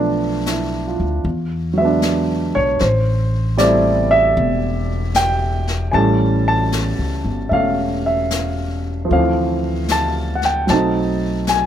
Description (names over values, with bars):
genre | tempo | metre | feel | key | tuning
jazz ballad | 76 BPM | 4/4 | swing 68% on 8ths | unclear | A4 = 441 Hz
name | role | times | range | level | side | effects
warm baby grand piano | accompaniment | 0.0-11.7 s | E3 to A5 | -17 LUFS | right 1 dB | none
upright bass | bass | 0.0-11.7 s | E1 to E2 | -21 LUFS | left 1 dB | none
jazz brush drum kit | drums | 0.5-11.7 s | brushed snare drum, hi-hat, snare drum | -28 LUFS | left 4 dB | none
room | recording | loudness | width
light reverb | none | -15 LUFS | side -10 dB against mid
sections
0.0-11.7 A section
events
none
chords
0.0 Bm7b5; 1.2 E7; 2.8 Am7; 5.9 A7; 9.1 Dm9; 10.7 B7b9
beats
0.46 1.24 2.02 | 2.80 3.58 4.36 5.15 | 5.93 6.72 7.51 8.30 | 9.10 9.89 10.68 11.47